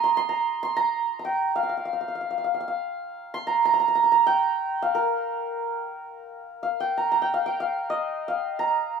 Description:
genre	indian classical, Hindustani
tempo	free time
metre	none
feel	none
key	Bb raga durga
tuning	A4 = 440 Hz
part	santur	solo	0.0-9.0 s	Bb4 to Eb6	-23 LUFS	right 3 dB	none
room	moderate small room reverb, RT60 0.6 s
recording	minimal, uncompressed stereo recording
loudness	-22 LUFS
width	side -6 dB against mid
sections	0.0-6.3 A section; 6.3-9.0 A section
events	none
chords	none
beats	free time

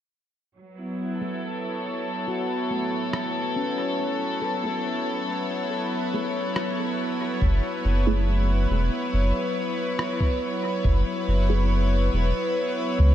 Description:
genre	ambient dub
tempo	70 BPM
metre	4/4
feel	straight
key	F# minor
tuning	A4 = 442 Hz
part	rich studio string section	sustained chords	0.6-13.1 s	F#3 to C#5	-26 LUFS	equal	low-pass filter
part	bubbling stepped-filter texture	texture	0.9-13.1 s	B4	-36 LUFS	left 3 dB	chorus, built-in reverb
part	filtered dub chord stab	stabs	1.2-11.7 s	A3 to G#4	-33 LUFS	right 3 dB	phaser, lush chorus, dub echo
part	handpan	arpeggios	2.3-6.6 s	A3 to A4	-33 LUFS	left 3 dB	low-pass filter, analog delay
part	electronic rim click	drums	3.1-10.2 s	none	-34 LUFS	equal	small room reverb, dub echo
part	warm sub bass	bass	7.4-13.1 s	E1 to C#2	-21 LUFS	equal	none
part	electronic kick drum	drums	7.4-13.1 s	none	-24 LUFS	equal	small room reverb
room	moderate lush hall reverb, RT60 2.7 s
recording	dreamy mix soaked in reverb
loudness	-23 LUFS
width	side -11 dB against mid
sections	0.6-13.1 A section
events	none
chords	0.6 F#m7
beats	| 0.57 1.42 2.28 3.14 | 3.99 4.85 5.71 6.57 | 7.42 8.28 9.14 9.99 | 10.85 11.71 12.57

